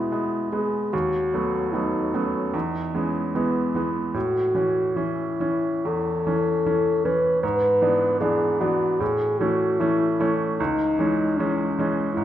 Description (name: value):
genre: classical, romantic duo for French horn and grand piano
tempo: 75 BPM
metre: 4/4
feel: rubato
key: E major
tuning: A4 = 443 Hz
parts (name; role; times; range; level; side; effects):
- dark French horn; melody; 0.0-12.2 s; B3 to B4; -23 LUFS; left 1 dB; none
- bright baby grand piano; accompaniment; 0.0-12.2 s; C#2 to D4; -24 LUFS; right 2 dB; none
room: wet recital hall reverb, RT60 1.2 s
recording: dark, warm production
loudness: -21 LUFS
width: side -11 dB against mid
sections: 0.0-12.2 A section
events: none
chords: 0.0 E; 0.9 B7/D#; 2.5 E; 4.1 A; 7.4 E7/G#; 9.0 A; 10.6 C#m